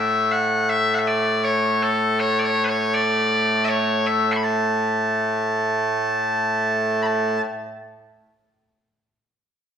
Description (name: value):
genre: scottish traditional, Scottish pipe music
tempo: 80 BPM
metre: 3/4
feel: straight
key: A major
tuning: A4 = 439 Hz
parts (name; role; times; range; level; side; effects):
- loud bright bagpipes; solo; 0.0-7.4 s; A2 to C#6; -19 LUFS; equal; none
room: wet recital hall reverb, RT60 1.4 s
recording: recorded in a church or concert hall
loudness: -18 LUFS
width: side -8 dB against mid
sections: 0.0-7.1 A section; 7.1-9.3 B section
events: none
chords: none